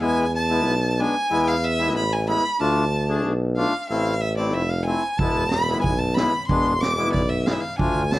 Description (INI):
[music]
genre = klezmer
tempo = 93 BPM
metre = 2/4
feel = straight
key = unclear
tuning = A4 = 438 Hz
[part]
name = rich violin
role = melody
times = 0.0-8.2 s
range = D5 to D6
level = -24 LUFS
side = right 1 dB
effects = none
[part]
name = accordion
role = accompaniment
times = 0.0-8.0 s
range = G#3 to G#4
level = -25 LUFS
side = left 2 dB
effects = none
[part]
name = warm tuba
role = bass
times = 0.0-8.2 s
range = E1 to E2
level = -24 LUFS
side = equal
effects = none
[part]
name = street-band drum kit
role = drums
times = 5.2-8.2 s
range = kick drum, snare drum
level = -25 LUFS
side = right 1 dB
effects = none
[sound]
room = light reverb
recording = dark, warm production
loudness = -19 LUFS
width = side -16 dB against mid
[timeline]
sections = 0.0-8.2 A section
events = none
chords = 0.0 E; 2.6 Dm; 3.9 Am; 5.2 E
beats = | 0.02 0.66 | 1.31 1.95 | 2.60 3.25 | 3.89 4.54 | 5.19 5.84 | 6.49 7.14 | 7.79